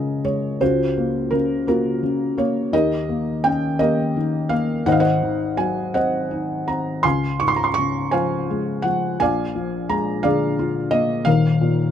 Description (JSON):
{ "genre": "classical, lyrical solo piano", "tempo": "56 BPM (dotted quarters)", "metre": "6/8", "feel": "rubato", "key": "Db major", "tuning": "A4 = 441 Hz", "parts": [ { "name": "felt-muted upright piano", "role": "solo", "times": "0.0-11.9 s", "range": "Eb1 to Db6", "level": "-18 LUFS", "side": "equal", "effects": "none" } ], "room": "little or no reverb", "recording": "close, detailed microphones", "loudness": "-18 LUFS", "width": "side -9 dB against mid", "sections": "0.0-11.9 A section", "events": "none", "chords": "0.0 Db6; 0.6 Gbmaj7/Db; 2.7 Eb7; 4.9 Ab7; 7.0 Dbmaj7; 9.2 Bb7; 11.3 Ebsus2", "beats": "| 0.61 1.67 | 2.73 3.79 | 4.86 5.95 | 7.05 8.14 | 9.21 10.25 | 11.27" }